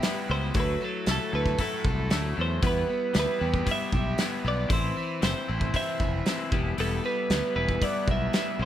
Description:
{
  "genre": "indie rock",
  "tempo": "116 BPM",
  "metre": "4/4",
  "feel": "straight",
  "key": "E minor",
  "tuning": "A4 = 439 Hz",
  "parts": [
    { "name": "twelve-string electric guitar", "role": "melody", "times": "0.0-8.7 s", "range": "A4 to E5", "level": "-31 LUFS", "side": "right 3 dB", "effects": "spring reverb, slapback echo" },
    { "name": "overdriven electric guitar", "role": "riff", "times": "0.0-8.7 s", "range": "E3 to A4", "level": "-35 LUFS", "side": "right 6 dB", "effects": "lush chorus, slapback echo" },
    { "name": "twelve-string electric guitar", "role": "riff", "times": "0.0-8.7 s", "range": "E3 to E4", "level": "-32 LUFS", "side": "left 9 dB", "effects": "spring reverb" },
    { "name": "loose indie drum kit", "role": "drums", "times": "0.0-8.5 s", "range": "hi-hat, kick drum, snare drum", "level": "-28 LUFS", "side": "equal", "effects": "none" },
    { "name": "growling fingered electric bass", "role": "bass", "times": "0.3-8.7 s", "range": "E1 to E2", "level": "-29 LUFS", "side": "equal", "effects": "overdrive" }
  ],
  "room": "light reverb",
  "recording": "none",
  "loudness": "-24 LUFS",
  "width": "side -11 dB against mid",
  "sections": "0.0-8.7 A section",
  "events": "none",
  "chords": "0.0 Em; 0.6 Dadd9; 2.6 Em; 4.7 Am; 6.5 Em"
}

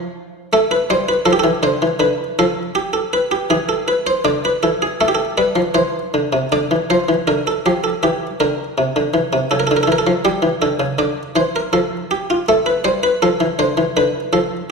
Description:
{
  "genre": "classical, baroque-style two-part invention for harpsichord",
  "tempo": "80 BPM",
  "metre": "4/4",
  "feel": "straight",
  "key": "D minor",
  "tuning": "A4 = 440 Hz",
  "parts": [
    { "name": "buff-stop harpsichord", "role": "solo", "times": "0.0-14.7 s", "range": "C3 to D5", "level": "-15 LUFS", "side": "equal", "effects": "none" }
  ],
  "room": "wet recital hall reverb, RT60 1.6 s",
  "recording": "recorded in a church or concert hall",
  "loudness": "-15 LUFS",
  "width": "side -4 dB against mid",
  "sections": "0.0-6.5 A section; 6.5-14.7 B section",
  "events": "none",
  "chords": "0.0 N.C.; 0.5 Am; 2.0 Bm7b5/D; 3.5 E7; 5.0 Am; 6.5 Dm; 8.0 Em7b5; 9.5 A7/C#; 11.0 Dm; 12.5 Am; 14.0 Bm7b5/D"
}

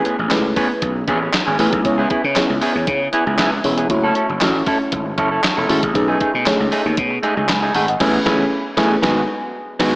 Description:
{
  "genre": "early-eighties boogie funk",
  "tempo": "117 BPM",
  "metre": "4/4",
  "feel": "straight",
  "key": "C# minor",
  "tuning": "A4 = 440 Hz",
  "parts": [
    { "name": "FM electric piano with soft pad layer", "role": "accompaniment", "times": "0.0-10.0 s", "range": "G#3 to B5", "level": "-20 LUFS", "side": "equal", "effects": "chorus, slapback echo" },
    { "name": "clean electric guitar", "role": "riff", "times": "0.0-10.0 s", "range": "A3 to A4", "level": "-20 LUFS", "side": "right 1 dB", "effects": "lush chorus, slapback echo" },
    { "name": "clean 12-bit digital drum machine", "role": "drums", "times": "0.1-10.0 s", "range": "crash cymbal, handclaps, hi-hat, kick drum, snare drum", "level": "-21 LUFS", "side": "equal", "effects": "none" },
    { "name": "gritty slap bass", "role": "bass", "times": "0.2-10.0 s", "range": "E1 to C#3", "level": "-21 LUFS", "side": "equal", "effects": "overdrive" }
  ],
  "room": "wet lush hall reverb, RT60 2.1 s",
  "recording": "big arena sound, small speaker sound",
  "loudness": "-15 LUFS",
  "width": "side -24 dB against mid",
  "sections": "0.0-10.0 A section",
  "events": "band accent 8.0-10.0",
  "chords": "0.0 Amaj9; 1.8 C#m7; 3.9 F#m7; 6.0 B13; 8.0 Amaj9; 9.0 G#m7"
}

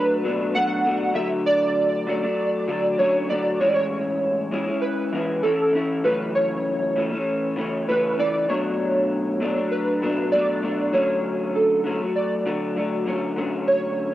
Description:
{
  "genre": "indie pop",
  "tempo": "98 BPM",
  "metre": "4/4",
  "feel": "straight",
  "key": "D lydian",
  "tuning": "A4 = 440 Hz",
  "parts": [
    { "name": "warbly lo-fi synth keys", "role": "melody", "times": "0.0-14.1 s", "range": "A4 to F#5", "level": "-22 LUFS", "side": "right 1 dB", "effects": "ensemble chorus, tape echo" },
    { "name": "electric guitar through a small old amp", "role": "accompaniment", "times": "0.0-14.1 s", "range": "F#2 to E4", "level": "-24 LUFS", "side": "left 2 dB", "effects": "analog chorus, warbly pitch drift, cassette tape" }
  ],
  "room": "light reverb, digital ambience",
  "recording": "home recording on cassette",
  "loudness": "-20 LUFS",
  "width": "side -14 dB against mid",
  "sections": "0.0-13.4 A section",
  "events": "none",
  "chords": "0.0 Bm7; 1.2 Dmaj7; 3.6 Amaj7; 6.0 F#m7; 8.5 Bm7; 10.9 Dmaj7"
}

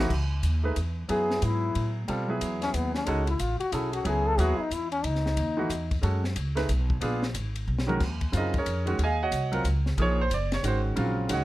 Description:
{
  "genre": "modal jazz",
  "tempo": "182 BPM",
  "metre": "3/4",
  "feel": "swing 63% on 8ths",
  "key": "F# dorian, Eb dorian from 8.0 s",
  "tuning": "A4 = 445 Hz",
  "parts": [
    { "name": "clear grand piano", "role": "accompaniment", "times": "0.0-11.4 s", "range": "Db3 to Ab5", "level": "-29 LUFS", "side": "right 2 dB", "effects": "none" },
    { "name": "upright bass", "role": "bass", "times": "0.0-11.4 s", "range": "Gb1 to B2", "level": "-28 LUFS", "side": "equal", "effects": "none" },
    { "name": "compact cocktail drum kit", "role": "drums", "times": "0.1-11.4 s", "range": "crash cymbal, hi-hat, kick drum, ride cymbal, snare drum, toms", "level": "-35 LUFS", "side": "left 1 dB", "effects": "none" },
    { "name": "warm trombone", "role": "second line", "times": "1.1-6.0 s", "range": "B3 to A4", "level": "-29 LUFS", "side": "left 3 dB", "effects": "none" }
  ],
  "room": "little or no reverb",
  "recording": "close, detailed microphones",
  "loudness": "-25 LUFS",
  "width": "side -16 dB against mid",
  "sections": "0.1-8.0 A section; 8.0-11.4 A section",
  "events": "trombone solo 0.0-8.0; drum fill 7.7-8.0",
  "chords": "0.1 F#9sus4; 7.0 A#7b9; 8.0 Ebm11"
}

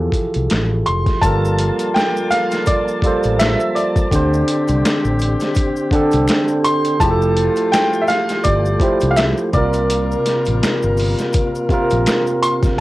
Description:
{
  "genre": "R&B, neo-soul",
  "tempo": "83 BPM",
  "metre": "4/4",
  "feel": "swing 55% on 16ths",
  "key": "G dorian",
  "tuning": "A4 = 443 Hz",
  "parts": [
    { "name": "barky tine electric piano", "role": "accompaniment", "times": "0.0-12.8 s", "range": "C3 to C5", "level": "-19 LUFS", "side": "right 1 dB", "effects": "overdrive, wide subtle chorus" },
    { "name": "mellow fretless electric bass", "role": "bass", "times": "0.0-12.1 s", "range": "F1 to D2", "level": "-19 LUFS", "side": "equal", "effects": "transformer saturation, ensemble chorus" },
    { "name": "boom bap sampler-style drum kit", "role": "drums", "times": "0.1-12.8 s", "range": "finger snaps, hi-hat, kick drum, snare drum", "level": "-20 LUFS", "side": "equal", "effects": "overdrive, cassette tape" },
    { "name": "clear grand piano", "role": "melody", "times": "0.9-12.5 s", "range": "D5 to C6", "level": "-20 LUFS", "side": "equal", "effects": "none" },
    { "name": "tonewheel organ", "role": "sustained chords", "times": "1.2-12.8 s", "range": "C3 to A5", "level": "-25 LUFS", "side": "left 1 dB", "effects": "slow rotary speaker" },
    { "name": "mellow horn section", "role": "stabs", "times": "1.2-12.4 s", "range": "C3 to Bb4", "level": "-26 LUFS", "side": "left 3 dB", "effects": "none" },
    { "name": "maracas and finger snaps", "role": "percussion", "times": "1.2-12.8 s", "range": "none", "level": "-34 LUFS", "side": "left 4 dB", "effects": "none" }
  ],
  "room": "light reverb",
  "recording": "home recording on cassette",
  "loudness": "-14 LUFS",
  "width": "side -17 dB against mid",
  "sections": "0.0-1.2 A section; 1.2-12.8 B section",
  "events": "none",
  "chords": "0.0 Fmaj9; 1.2 Gm9; 4.1 D7sus4; 7.0 Fmaj9; 9.5 C7sus4"
}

